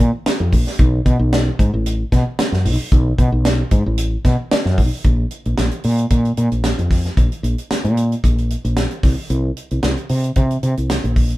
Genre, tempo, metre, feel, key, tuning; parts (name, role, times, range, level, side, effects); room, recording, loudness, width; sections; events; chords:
electric jazz fusion; 113 BPM; 4/4; swing 54% on 16ths; A4 = 441 Hz
woody fretless electric bass; bass; 0.0-11.3 s; A1 to C3; -17 LUFS; equal
tight funk drum kit; drums; 0.3-11.4 s; hi-hat, kick drum, snare drum; -18 LUFS; equal
moderate studio ambience, RT60 0.5 s; band playing live in one room; -15 LUFS; side -18 dB against mid
0.0-5.0 A section; 5.0-11.4 B section